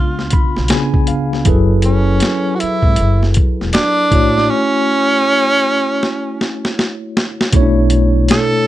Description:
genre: R&B, neo-soul.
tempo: 79 BPM.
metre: 4/4.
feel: swing 63% on 16ths.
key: B dorian.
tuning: A4 = 441 Hz.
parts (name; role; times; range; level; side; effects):
warm tenor saxophone; melody; 0.0-8.7 s; C#4 to A4; -15 LUFS; right 1 dB; slapback echo.
tine electric piano; accompaniment; 0.0-8.7 s; B2 to B5; -18 LUFS; equal; medium stereo tremolo.
upright bass; bass; 0.0-8.3 s; E1 to C#2; -16 LUFS; equal; none.
boom bap sampler-style drum kit; drums; 0.2-8.5 s; hi-hat, kick drum, snare drum; -15 LUFS; equal; none.
room: light reverb.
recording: none.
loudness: -12 LUFS.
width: side -14 dB against mid.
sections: 0.0-7.5 A section; 7.5-8.7 B section.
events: tine electric piano fill 0.0-1.5; break 4.5-7.5; drum fill 6.0-7.5.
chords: 0.0 C#7b9; 1.5 F#m11; 4.1 A6; 7.5 Bm11.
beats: 0.70 | 1.46 2.21 2.97 3.73 | 4.49 5.25 6.01 6.77 | 7.53 8.29.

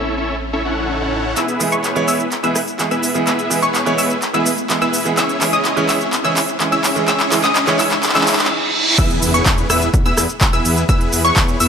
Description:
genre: EDM, festival progressive house.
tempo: 126 BPM.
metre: 4/4.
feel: straight.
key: E major.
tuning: A4 = 440 Hz.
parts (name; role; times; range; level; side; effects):
bright concert grand piano; accompaniment; 0.0-8.3 s; A2 to C#5; -20 LUFS; right 3 dB; sidechain pumping, ping-pong delay.
dense compressed supersaw; riff; 0.0-11.7 s; B3 to F#5; -20 LUFS; equal; sidechain pumping, low-pass filter, ping-pong delay.
wide detuned saw bass; bass; 0.0-1.3, 9.0-11.7 s; E1 to E2; -23 LUFS; equal; chorus, sidechain pumping.
riser, reverse cymbal and impact; sound effects; 0.0-10.9 s; none; -24 LUFS; right 1 dB; none.
big-room dance drum kit; drums; 0.1-11.7 s; cabasa, crash cymbal, handclaps, hi-hat, rim click; -19 LUFS; equal; low-pass filter on hats, low-pass filter on snare, low-pass filter on perc, low-pass filter on cymbals, low-pass filter on room.
wide unison pluck; arpeggios; 1.4-11.7 s; C#6 to E6; -22 LUFS; left 2 dB; sidechain pumping, ping-pong delay.
electronic kick drum; drums; 9.0-11.5 s; none; -16 LUFS; equal; none.
room: moderate concert hall reverb, RT60 2.2 s.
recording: none.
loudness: -14 LUFS.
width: side -7 dB against mid.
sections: 0.0-1.4 A section; 1.4-9.0 B section; 9.0-11.7 C section.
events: riser 0.0-1.4; build-up 1.4-9.0; drum fill 1.4-8.5; reverse cymbal 8.0-9.0; drop 9.0-11.7; impact 9.0-10.9.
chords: 0.0 A; 1.4 E; 5.2 C#m; 9.0 E.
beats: 0.41 0.89 | 1.36 1.84 2.32 2.79 | 3.27 3.75 4.22 4.70 | 5.17 5.65 6.13 6.60 | 7.08 7.56 8.03 8.51 | 8.98 9.46 9.94 10.41 | 10.89 11.37.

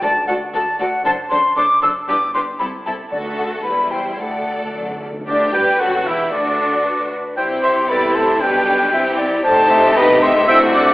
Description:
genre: quick classical-period movement for symphony orchestra.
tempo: 115 BPM.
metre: 2/4.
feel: straight.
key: G major.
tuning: A4 = 439 Hz.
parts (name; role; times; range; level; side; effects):
warm studio violin section; melody; 0.0-10.9 s; D4 to D5; -25 LUFS; left 1 dB; none.
concert flute; second line; 0.0-10.9 s; D5 to E6; -20 LUFS; left 1 dB; none.
warm studio violin section; second line; 0.0-10.9 s; E4 to G5; -25 LUFS; equal; none.
warm studio viola section; accompaniment; 0.0-10.9 s; G3 to G4; -24 LUFS; equal; none.
rich studio cello section; bass; 0.0-10.9 s; C2 to C3; -29 LUFS; equal; none.
rich studio double bass section; bass; 0.0-10.9 s; E1 to D2; -36 LUFS; right 1 dB; none.
timpani; percussion; 0.0-6.0 s; G2 to D3; -37 LUFS; equal; none.
mellow cor anglais; second line; 5.3-10.9 s; B4 to A5; -17 LUFS; equal; none.
dark French horn section; sustained chords; 5.3-10.9 s; D3 to E4; -24 LUFS; left 1 dB; none.
mellow clarinet; second line; 5.8-10.9 s; G4 to E5; -21 LUFS; left 1 dB; none.
room: wet scoring stage reverb, RT60 1.6 s.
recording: telephone sound.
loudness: -14 LUFS.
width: side -18 dB against mid.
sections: 0.0-5.3 A section; 5.3-10.9 B section.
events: timpani fill 4.2-5.3.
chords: 0.0 D; 1.1 D7/F#; 2.1 G5; 2.6 Am/C; 3.1 D; 3.7 Em; 4.2 D; 5.3 G; 6.3 D; 7.4 C; 8.4 G/B; 8.9 C; 9.4 Am7b5/C.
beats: | 0.01 0.53 | 1.05 1.57 | 2.08 2.60 | 3.12 3.65 | 4.19 4.73 | 5.27 5.80 | 6.33 6.85 | 7.37 7.89 | 8.41 8.93 | 9.45 9.96 | 10.48.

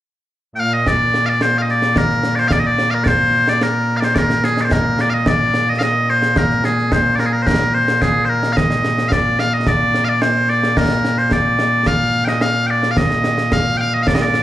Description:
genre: scottish traditional, Scottish pipe music.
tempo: 109 BPM.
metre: 4/4.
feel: straight.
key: Bb mixolydian.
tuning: A4 = 443 Hz.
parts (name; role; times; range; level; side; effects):
loud bright bagpipes; melody; 0.6-14.4 s; Bb2 to G5; -15 LUFS; equal; slapback echo.
concert snare drum and concert bass drum; drums; 0.9-14.4 s; none; -20 LUFS; equal; none.
room: light reverb, studio reverb.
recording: live gig heard through the venue's PA, club reverb.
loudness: -14 LUFS.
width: side -13 dB against mid.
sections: 0.9-14.4 A section.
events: none.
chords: none.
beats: 0.31 | 0.86 1.41 1.96 2.51 | 3.06 3.62 4.17 4.72 | 5.27 5.82 6.37 6.92 | 7.47 8.02 8.57 9.12 | 9.67 10.22 10.77 11.32 | 11.87 12.42 12.97 13.52 | 14.07.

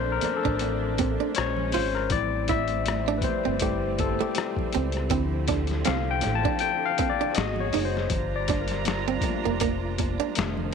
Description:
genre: R&B, neo-soul.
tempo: 80 BPM.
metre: 4/4.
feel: swing 56% on 16ths.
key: unclear.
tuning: A4 = 437 Hz.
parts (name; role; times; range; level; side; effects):
barky tine electric piano; accompaniment; 0.0-10.7 s; Eb3 to A5; -28 LUFS; left 12 dB; none.
rich studio string section; sustained chords; 0.0-10.7 s; D3 to Bb5; -33 LUFS; right 13 dB; none.
deep dub fingered electric bass; bass; 0.0-10.7 s; F1 to D2; -30 LUFS; equal; none.
archtop guitar, miked and amplified; second line; 0.2-10.3 s; A3 to F4; -30 LUFS; right 14 dB; none.
boom bap sampler-style drum kit; drums; 0.2-10.6 s; hi-hat, kick drum, rim click, snare drum; -30 LUFS; left 3 dB; none.
congas; percussion; 0.2-10.7 s; none; -38 LUFS; right 10 dB; none.
room: light reverb, digital ambience.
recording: 1960s-style stereo with parts hard left and right.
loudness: -23 LUFS.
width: side -6 dB against mid.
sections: 0.0-10.7 A section.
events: tine electric piano solo 0.0-10.7.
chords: 0.0 Bbmaj9; 1.4 Bbm7; 2.1 Am7; 5.1 Dm7; 7.4 G#m7; 8.1 Gm7.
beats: 0.60 1.35 | 2.10 2.85 3.60 4.35 | 5.10 5.85 6.60 7.35 | 8.10 8.85 9.60 10.35.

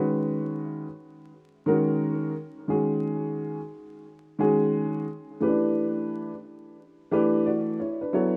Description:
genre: hip hop.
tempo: 88 BPM.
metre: 4/4.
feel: swing 61% on 16ths.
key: unclear.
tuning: A4 = 442 Hz.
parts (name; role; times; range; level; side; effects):
dark upright piano; solo; 0.0-8.4 s; D#3 to D5; -27 LUFS; equal; analog delay.
room: wet studio ambience, RT60 0.5 s.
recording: rough home demo mix, vinyl crackle.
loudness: -27 LUFS.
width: mono.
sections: 0.0-8.4 A section.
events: none.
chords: 0.0 F#sus24; 5.4 A9sus4.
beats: 0.64 1.32 2.00 | 2.69 3.37 4.05 4.73 | 5.41 6.09 6.78 7.46 | 8.14.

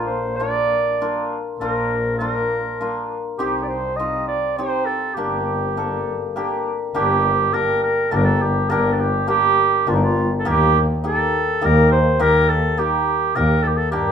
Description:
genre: klezmer.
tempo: 102 BPM.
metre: 3/4.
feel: straight.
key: G minor.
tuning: A4 = 440 Hz.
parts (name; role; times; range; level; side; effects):
mellow clarinet; melody; 0.0-14.1 s; Eb4 to Eb5; -20 LUFS; right 2 dB; none.
hammered dulcimer; accompaniment; 0.0-14.1 s; Bb3 to A4; -23 LUFS; left 2 dB; none.
warm double bass; bass; 0.0-14.1 s; G1 to G2; -22 LUFS; equal; none.
room: moderate studio reverb, RT60 0.6 s.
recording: minimal, uncompressed stereo recording.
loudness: -17 LUFS.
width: side -8 dB against mid.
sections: 0.0-6.9 A section; 6.9-14.1 B section.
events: speeding up 0.0-14.1.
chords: 0.0 Bb; 3.4 Cm; 5.2 Gm; 10.5 Eb.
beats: 0.40 1.00 | 1.60 2.20 2.80 | 3.40 3.99 4.59 | 5.18 5.77 6.36 | 6.95 7.54 8.12 | 8.71 9.29 9.87 | 10.46 11.04 11.61 | 12.19 12.77 13.35 | 13.92.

